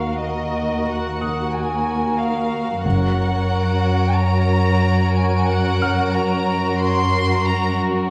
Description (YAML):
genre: cinematic, suspense film score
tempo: 91 BPM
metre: 4/4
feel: straight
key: unclear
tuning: A4 = 440 Hz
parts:
  - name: muted chamber violin section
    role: melody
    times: 0.0-7.8 s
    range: Eb5 to C6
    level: -27 LUFS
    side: equal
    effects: none
  - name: muted chamber violin section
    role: second line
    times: 0.0-8.1 s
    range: Gb4 to Bb4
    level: -26 LUFS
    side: equal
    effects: none
  - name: muted studio cello section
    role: bass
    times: 0.0-8.1 s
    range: Eb2 to Gb2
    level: -22 LUFS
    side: equal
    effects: none
  - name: bright grand piano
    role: texture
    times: 0.0-8.1 s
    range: Db6 to F6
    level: -36 LUFS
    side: equal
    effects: none
  - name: muted symphonic double bass section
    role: bass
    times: 2.8-3.5 s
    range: Gb1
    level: -26 LUFS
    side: equal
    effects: none
  - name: muted studio violin section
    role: texture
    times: 2.9-7.8 s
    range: Db5 to D7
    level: -33 LUFS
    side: equal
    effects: none
room: moderate scoring stage reverb, RT60 1.9 s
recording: dark, warm production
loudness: -20 LUFS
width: mono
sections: 0.0-8.1 A section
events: none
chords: 0.0 Ebmadd9; 2.8 Gb